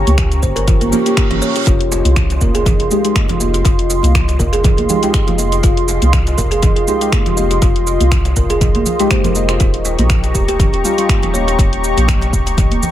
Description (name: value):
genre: afro house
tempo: 121 BPM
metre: 4/4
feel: swing 55% on 16ths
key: F minor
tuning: A4 = 440 Hz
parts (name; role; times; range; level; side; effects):
- dark analog pad; sustained chords; 0.0-12.9 s; Db4 to Db6; -22 LUFS; right 1 dB; chorus, sidechain pumping
- kalimba; arpeggios; 0.0-11.6 s; Bb3 to Eb5; -20 LUFS; left 1 dB; sidechain pumping, tape echo
- deep mellow chord stab; stabs; 0.0-11.8 s; G3 to G4; -21 LUFS; left 1 dB; chorus, phaser, sidechain pumping, dub echo
- round analog bass; bass; 0.0-12.8 s; Eb1 to Db2; -17 LUFS; equal; sidechain pumping
- house drum kit; drums; 0.1-12.9 s; cabasa, finger snaps, hi-hat; -22 LUFS; equal; dub echo
- congas; percussion; 0.1-12.9 s; none; -23 LUFS; right 4 dB; dub echo
- electronic kick drum; drums; 0.2-12.7 s; none; -15 LUFS; equal; none
- reverse cymbal; sound effects; 0.9-1.7 s; none; -25 LUFS; right 8 dB; none
- djembe; percussion; 1.9-12.7 s; none; -26 LUFS; left 1 dB; none
room: light reverb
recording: echo-heavy mix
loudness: -12 LUFS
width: side -12 dB against mid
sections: 0.0-12.9 A section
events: reverse cymbal 0.9-1.7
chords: 0.0 Gdim; 1.7 Fm7; 9.6 Eb7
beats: 0.18 0.68 1.17 | 1.67 2.17 2.66 3.16 | 3.65 4.15 4.64 5.14 | 5.64 6.13 6.63 7.12 | 7.62 8.12 8.61 9.11 | 9.60 10.10 10.60 11.09 | 11.59 12.08 12.58